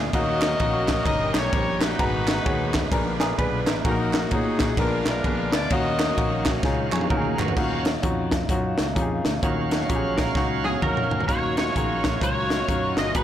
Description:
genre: uptempo gospel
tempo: 129 BPM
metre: 4/4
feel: swing 62% on 8ths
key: Eb minor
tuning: A4 = 439 Hz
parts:
  - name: clean electric guitar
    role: second line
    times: 0.0-0.1, 3.2-4.1, 6.9-11.1 s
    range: Gb4 to Db5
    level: -33 LUFS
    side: right 8 dB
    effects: tremolo
  - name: warm grand piano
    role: accompaniment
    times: 0.0-13.2 s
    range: G2 to Bb5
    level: -28 LUFS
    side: left 2 dB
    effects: none
  - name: bright tonewheel organ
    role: sustained chords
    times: 0.0-13.2 s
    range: Cb3 to F5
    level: -32 LUFS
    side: right 4 dB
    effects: fast rotary speaker, overdrive
  - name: fingered electric bass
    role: bass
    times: 0.0-13.2 s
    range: G1 to Bb2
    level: -30 LUFS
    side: right 1 dB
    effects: none
  - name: bright saxophone section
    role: melody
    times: 0.1-6.6, 10.6-13.2 s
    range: Db4 to Eb5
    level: -27 LUFS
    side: left 2 dB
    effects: none
  - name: crisp fusion drum kit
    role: drums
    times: 0.1-13.2 s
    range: crash cymbal, hi-hat, kick drum, ride cymbal, snare drum, toms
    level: -25 LUFS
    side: equal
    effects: none
  - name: group handclap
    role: percussion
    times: 0.4-7.5 s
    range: none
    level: -35 LUFS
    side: right 5 dB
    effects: none
  - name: mellow French horn section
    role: sustained chords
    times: 7.6-11.3 s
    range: Eb3 to F5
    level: -39 LUFS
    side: right 1 dB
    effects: none
  - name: clean electric guitar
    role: melody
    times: 10.6-13.2 s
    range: Ab4 to Eb5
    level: -28 LUFS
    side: right 2 dB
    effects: ensemble chorus
room: light reverb, studio reverb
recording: blown-out, overdriven recording, overdrive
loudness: -21 LUFS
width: side -11 dB against mid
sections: 0.0-7.6 A section; 7.6-11.3 B section; 11.3-13.2 C section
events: drum fill 6.6-7.6, 10.4-11.3; tonewheel organ solo 7.6-11.3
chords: 0.1 Ebm9; 1.1 Eb7/G; 2.0 Abm9; 2.9 Bb7b9; 3.8 Ebm/Bb; 4.8 Bb7b9; 5.7 Ebm9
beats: | 0.14 0.60 1.06 1.53 | 1.99 2.45 2.92 3.38 | 3.85 4.31 4.77 5.24 | 5.70 6.17 6.63 7.10 | 7.56 8.03 8.49 8.96 | 9.42 9.89 10.36 10.82 | 11.29 11.75 12.22 12.68 | 13.15

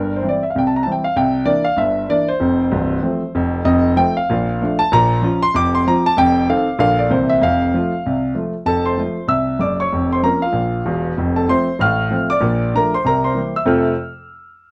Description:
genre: jazz, stride piano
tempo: 192 BPM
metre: 4/4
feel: swing 60% on 8ths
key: F major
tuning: A4 = 440 Hz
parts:
  - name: warm grand piano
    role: solo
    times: 0.0-13.9 s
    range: C1 to F6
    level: -17 LUFS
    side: equal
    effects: none
room: moderate studio reverb, RT60 0.6 s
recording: none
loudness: -17 LUFS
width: mono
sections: 0.0-8.7 A section; 8.7-13.7 B section; 13.7-14.7 C section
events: none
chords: 0.0 C/G; 1.2 C9; 2.4 F; 3.7 F7; 4.3 Bbmaj7; 4.9 Bbm; 5.5 F5; 6.2 F7; 6.8 Bbmaj7; 7.1 C7; 7.4 F; 9.9 Bbm/F; 11.2 F; 11.8 F/A; 12.4 Bbmaj7; 13.1 C7; 13.7 F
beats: 0.22 0.53 0.84 | 1.16 1.47 1.78 2.09 | 2.41 2.72 3.03 3.35 | 3.66 3.97 4.28 4.60 | 4.91 5.22 5.54 5.85 | 6.16 6.47 6.79 7.10 | 7.41 7.73 8.04 8.35 | 8.67 8.98 9.29 9.61 | 9.92 10.23 10.55 10.86 | 11.17 11.49 11.80 12.11 | 12.43 12.74 13.05 13.37 | 13.68

